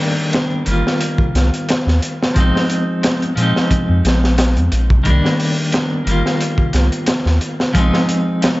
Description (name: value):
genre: trip hop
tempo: 89 BPM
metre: 4/4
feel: swing 54% on 16ths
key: C minor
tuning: A4 = 440 Hz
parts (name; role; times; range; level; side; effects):
- clean electric guitar; accompaniment; 0.0-8.6 s; Eb3 to F4; -18 LUFS; equal; tremolo, vintage 12-bit sampler grit, tape echo
- crunchy breakbeat drum kit; drums; 0.3-8.6 s; hi-hat, kick drum, snare drum; -18 LUFS; equal; none
- soft dub sub bass; bass; 0.7-7.9 s; G1 to Bb2; -15 LUFS; equal; none
room: small room ambience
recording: vinyl crackle, nothing above 7.7 kHz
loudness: -14 LUFS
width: side -19 dB against mid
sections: 0.0-8.6 A section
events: none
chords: 0.0 Cm7 (rootless); 2.4 Bb7sus4; 5.1 Cm7 (rootless); 7.8 Bb7sus4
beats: 0.34 1.01 1.69 | 2.36 3.03 3.71 4.38 | 5.05 5.73 6.40 7.08 | 7.75 8.43